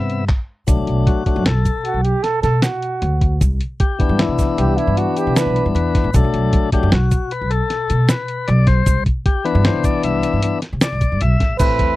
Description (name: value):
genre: progressive instrumental, band music in an uneven meter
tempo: 154 BPM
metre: 7/4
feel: straight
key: C lydian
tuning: A4 = 442 Hz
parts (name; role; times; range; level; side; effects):
- tonewheel organ; accompaniment; 0.0-12.0 s; C3 to E5; -20 LUFS; left 5 dB; overdrive
- upright bass; bass; 0.0-12.0 s; A1 to C3; -18 LUFS; equal; none
- lo-fi sampler-style drum kit; drums; 0.1-11.9 s; crash cymbal, handclaps, hi-hat, kick drum, snare drum; -18 LUFS; equal; none
- tube shaker; percussion; 0.7-11.8 s; none; -34 LUFS; right 12 dB; none
- breathy flugelhorn; second line; 1.9-5.7, 11.6-12.0 s; E4 to B4; -20 LUFS; right 4 dB; none
room: little or no reverb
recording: dry, close 1970s-style studio recording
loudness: -15 LUFS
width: side -17 dB against mid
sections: 0.7-11.6 A section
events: tonewheel organ solo 0.7-11.6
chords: 0.0 Cmaj7; 0.7 Bm7; 3.4 Cmaj7; 6.1 Bm7; 8.9 Cmaj7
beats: 0.29 | 0.68 1.07 1.46 1.85 2.24 2.63 3.02 | 3.42 3.81 4.20 4.58 4.97 5.37 5.75 | 6.14 6.53 6.92 7.31 7.70 8.09 8.48 | 8.87 9.26 9.65 10.04 10.43 10.82 11.21 | 11.60